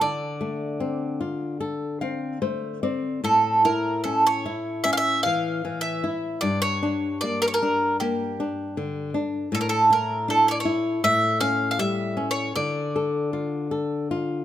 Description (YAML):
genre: fado-style ballad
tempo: 72-80 BPM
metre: 4/4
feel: rubato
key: D minor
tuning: A4 = 440 Hz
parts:
  - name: bowl-back mandolin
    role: melody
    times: 0.0-14.4 s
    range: G4 to F5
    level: -22 LUFS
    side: right 2 dB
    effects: none
  - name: flamenco guitar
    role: accompaniment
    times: 0.0-14.4 s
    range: G2 to F5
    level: -26 LUFS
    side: left 3 dB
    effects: none
room: light reverb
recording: close, detailed microphones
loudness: -22 LUFS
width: side -12 dB against mid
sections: 0.0-3.2 A section; 3.2-14.4 B section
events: nylon-string guitar fill 1.6-3.2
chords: 0.0 Dm7; 3.2 A; 6.4 Gm; 9.5 Asus4; 11.0 A7; 12.5 Dm